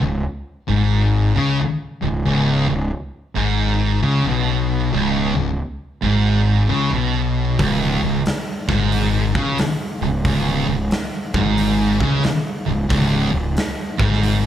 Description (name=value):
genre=stoner and doom metal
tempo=90 BPM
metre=4/4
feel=swing 65% on 8ths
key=unclear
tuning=A4 = 440 Hz
part: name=thick fuzz guitar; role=riff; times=0.0-14.5 s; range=C#2 to C#3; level=-21 LUFS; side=left 5 dB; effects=distortion
part: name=thick fuzz guitar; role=riff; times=0.0-14.5 s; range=C#2 to C#3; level=-21 LUFS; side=right 4 dB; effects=distortion
part: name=fuzz fingered electric bass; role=bass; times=0.0-14.5 s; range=C#1 to C#2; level=-23 LUFS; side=equal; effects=overdrive
part: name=big rock drum kit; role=drums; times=7.6-14.4 s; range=hi-hat, kick drum, snare drum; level=-23 LUFS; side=equal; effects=none
room=moderate large studio reverb, RT60 1.1 s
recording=band playing live in one room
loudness=-17 LUFS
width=side -10 dB against mid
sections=0.0-14.5 A section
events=none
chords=0.0 C#5